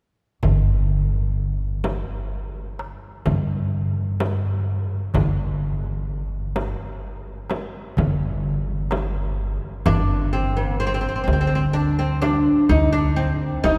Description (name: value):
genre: Arabic maqam ensemble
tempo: 127 BPM (eighths)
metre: 10/8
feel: straight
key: G maqam suznak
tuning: A4 = 440 Hz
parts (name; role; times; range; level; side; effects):
- upright bass; bass; 0.4-13.8 s; G1 to G2; -25 LUFS; equal; none
- darbuka; percussion; 0.4-9.1 s; none; -31 LUFS; equal; none
- frame drum; percussion; 0.4-13.8 s; none; -31 LUFS; equal; none
- oud; melody; 9.9-13.8 s; Bb3+50c to Eb4+20c; -23 LUFS; equal; none
room: wet cathedral reverb, RT60 4.4 s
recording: recorded in a church or concert hall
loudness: -22 LUFS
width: mono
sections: 0.4-9.9 A section; 9.9-13.8 B section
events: none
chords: none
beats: | 0.43 0.91 1.38 1.85 2.32 2.79 3.26 3.73 4.21 4.68 | 5.15 5.62 6.09 6.56 7.04 7.51 7.98 8.45 8.92 9.39 | 9.87 10.34 10.81 11.28 11.75 12.22 12.70 13.17 13.64